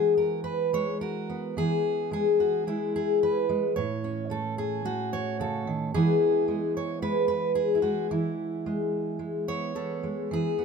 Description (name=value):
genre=folk, solo fingerstyle acoustic guitar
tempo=110 BPM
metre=4/4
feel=straight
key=E major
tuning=A4 = 440 Hz
part: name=fingerpicked steel-string acoustic guitar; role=solo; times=0.0-10.6 s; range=A2 to C#5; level=-25 LUFS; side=equal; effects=none
room=light reverb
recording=none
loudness=-25 LUFS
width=side -5 dB against mid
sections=0.0-1.6 A section; 1.6-10.3 B section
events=none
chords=0.0 Eadd9; 1.6 E; 3.8 A; 5.9 E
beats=0.45 1.01 | 1.57 2.12 2.67 3.22 | 3.76 4.31 4.86 5.40 | 5.95 6.48 7.02 7.56 | 8.10 8.65 9.20 9.76 | 10.32